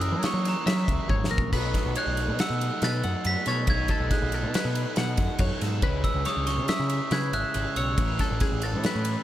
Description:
math rock and midwest emo; 139 BPM; 5/4; straight; A4 = 439 Hz
glockenspiel with soft plastic mallets; melody; 0.0-9.2 s; A#5 to B6; -31 LUFS; right 2 dB
twelve-string electric guitar; arpeggios; 0.0-9.2 s; G#4 to F#5; -34 LUFS; left 6 dB
overdriven semi-hollow guitar; riff; 0.0-9.2 s; F#2 to E4; -33 LUFS; right 1 dB; spring reverb
growling picked electric bass; bass; 0.0-9.1 s; G#1 to F#3; -28 LUFS; equal; overdrive
loose indie drum kit; drums; 0.0-9.2 s; crash cymbal, kick drum, ride cymbal, snare drum, toms; -28 LUFS; equal
little or no reverb; -23 LUFS; side -13 dB against mid
0.0-9.2 A section
drum fill 1.1-1.5
0.0 F#9; 1.5 B7sus2; 5.8 C#m7; 8.0 A
0.24 0.67 1.10 | 1.53 1.96 2.39 2.82 3.25 | 3.68 4.11 4.54 4.97 5.41 | 5.83 6.26 6.70 7.13 7.56 | 7.99 8.42 8.85

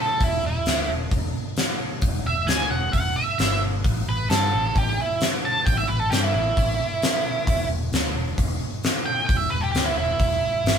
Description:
blues rock power trio and southern rock; 132 BPM; 4/4; straight; A4 = 442 Hz
octave-fuzz lead guitar; melody; 0.0-10.8 s; E4 to A5; -24 LUFS; right 3 dB; distortion
vintage muted fingered electric bass; bass; 0.2-10.8 s; E1 to G2; -27 LUFS; left 1 dB
huge arena drum kit; drums; 0.2-10.8 s; hi-hat, kick drum, snare drum; -23 LUFS; equal
moderate studio reverb, RT60 0.8 s; band playing live in one room; -20 LUFS; side -7 dB against mid
0.0-10.8 A section
lead electric guitar solo 0.0-10.8
0.2 N.C.; 3.8 A5; 7.5 E7(no3)
| 0.21 0.66 1.12 1.57 | 2.03 2.48 2.94 3.39 | 3.84 4.30 4.75 5.21 | 5.66 6.12 6.57 7.02 | 7.48 7.93 8.38 8.84 | 9.29 9.74 10.20 10.65

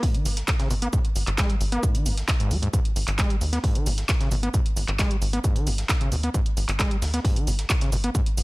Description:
driving peak-time techno; 133 BPM; 4/4; straight; G# harmonic minor; A4 = 435 Hz
overdriven acid bass; riff; 0.0-8.2 s; G2 to B3; -30 LUFS; equal; distortion, sidechain pumping, dub echo
breakbeat sampler-style drum kit; drums; 0.0-8.4 s; hi-hat, shaker, snare drum; -37 LUFS; right 2 dB; high-pass filter on snare, high-pass filter on perc, high-pass filter on hats
electronic kick drum; drums; 0.0-8.2 s; -23 LUFS; equal
punchy analog drum machine; drums; 0.0-8.4 s; handclaps, hi-hat; -29 LUFS; equal
tight sequencer bass; bass; 0.3-8.4 s; G#1 to D#2; -26 LUFS; equal; sidechain pumping
digital ambience; -21 LUFS; side -23 dB against mid
0.0-8.4 A section
0.0 G#5
0.03 0.48 | 0.93 1.38 1.83 2.28 | 2.73 3.19 3.64 4.09 | 4.54 4.99 5.44 5.89 | 6.34 6.79 7.25 7.70 | 8.15

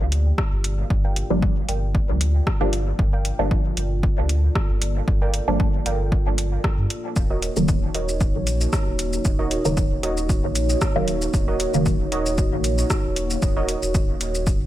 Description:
dub techno; 115 BPM; 4/4; swing 54% on 16ths; G minor; A4 = 441 Hz
dark analog pad; sustained chords; 0.0-14.7 s; Bb3 to D5; -29 LUFS; right 1 dB; chorus, phaser, sidechain pumping
filtered dub chord stab; stabs; 0.0-13.8 s; Db3 to D4; -26 LUFS; right 1 dB; phaser, sidechain pumping, dub echo
warm sub bass; bass; 0.0-14.7 s; Eb1 to G2; -24 LUFS; equal; sidechain pumping
deep house drum kit; drums; 0.1-14.6 s; hi-hat, rim click, shaker; -29 LUFS; equal
electronic kick drum; drums; 0.4-14.6 s; -22 LUFS; equal
warbly dusty pluck; riff; 1.0-13.6 s; Gb4 to G5; -32 LUFS; right 3 dB; chorus, sidechain pumping, dub echo
light reverb, digital ambience; -19 LUFS; side -14 dB against mid
0.0-14.7 A section
0.0 Gm7; 7.2 Ebm7
0.38 | 0.90 1.43 1.95 2.47 | 2.99 3.51 4.03 4.55 | 5.08 5.60 6.12 6.64 | 7.16 7.69 8.21 8.73 | 9.25 9.77 10.29 10.82 | 11.34 11.86 12.38 12.90 | 13.43 13.95 14.47

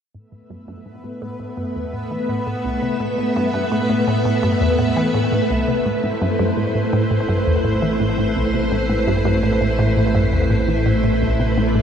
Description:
ambient, sequencer-driven space music; 84 BPM; 4/4; straight; A minor; A4 = 440 Hz
string machine, full ensemble; sustained chords; 0.1-11.8 s; A3 to E5; -20 LUFS; equal; ensemble chorus, shimmer reverb
resonant blip pluck; riff; 0.1-11.8 s; C2 to E3; -21 LUFS; equal; phaser, ping-pong delay
bubbling stepped-filter texture; texture; 1.1-5.9 s; B3 to B4; -30 LUFS; equal; chorus, built-in reverb, shimmer reverb
analog drone; bass; 7.4-11.8 s; A1; -23 LUFS; equal; chorus
wet huge ambient reverb, RT60 7.0 s; dark, warm production; -17 LUFS; side -8 dB against mid
0.1-5.9 A section; 5.9-11.8 B section
fade-in on synth arpeggio sound 0.1-5.9; fade-in on string machine 0.1-5.9; fade-in on synth texture 0.1-5.9
0.1 Asus2; 5.9 Amadd9
| 0.14 0.86 1.57 2.29 | 3.00 3.72 4.43 5.14 | 5.86 6.57 7.29 8.00 | 8.72 9.43 10.14 10.86 | 11.57

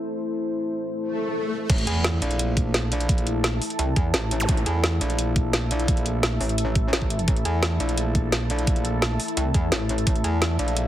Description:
dark technical drum and bass; 172 BPM; 4/4; straight; A phrygian; A4 = 440 Hz
deep dark ambient pad; sustained chords; 0.0-10.9 s; A3 to A5; -29 LUFS; left 2 dB; chorus, built-in reverb, sidechain pumping
swell, impact and zap; sound effects; 1.1-4.5 s; -31 LUFS; equal
metallic wobble bass; bass; 1.7-10.9 s; A1 to E2; -24 LUFS; equal; chorus, tube saturation
drum and bass drum kit; drums; 1.7-10.8 s; crash cymbal, hi-hat, snare drum; -26 LUFS; equal
electronic kick drum; drums; 1.7-10.1 s; -22 LUFS; equal; overdrive
light reverb; heavily compressed radio sound, multiband compression; -21 LUFS; side -12 dB against mid
0.0-1.7 A section; 1.7-10.9 B section
swell 1.1-1.7; drop 1.7-10.9; impact 1.7-3.1
0.0 A5
| 0.30 0.65 1.00 1.35 | 1.70 2.04 2.39 2.74 | 3.09 3.44 3.79 4.14 | 4.49 4.83 5.18 5.53 | 5.88 6.23 6.58 6.93 | 7.28 7.63 7.97 8.32 | 8.67 9.02 9.37 9.72 | 10.07 10.42 10.77

